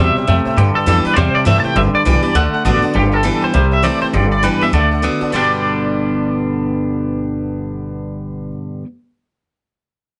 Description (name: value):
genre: rockabilly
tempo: 202 BPM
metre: 4/4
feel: swing 61% on 8ths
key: G major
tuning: A4 = 444 Hz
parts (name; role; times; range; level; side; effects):
- electric guitar at the edge of break-up; melody; 0.0-8.5 s; G4 to A5; -20 LUFS; equal; tremolo, tape echo
- picked steel-string acoustic guitar; accompaniment; 0.0-8.9 s; G2 to G4; -25 LUFS; equal; none
- tack piano; accompaniment; 0.0-8.5 s; A4 to A5; -30 LUFS; equal; none
- clean electric guitar; riff; 0.0-8.9 s; G2 to D4; -21 LUFS; equal; none
- upright bass; bass; 0.0-8.5 s; G1 to G2; -20 LUFS; equal; none
room: light reverb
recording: nothing above 10.9 kHz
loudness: -15 LUFS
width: mono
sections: 0.0-3.0 A section; 3.0-5.3 B section; 5.3-7.7 C section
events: none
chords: 0.0 C; 0.6 G; 1.2 C; 1.8 G; 2.4 D; 3.0 G; 3.5 C; 4.1 G; 4.7 D; 5.3 G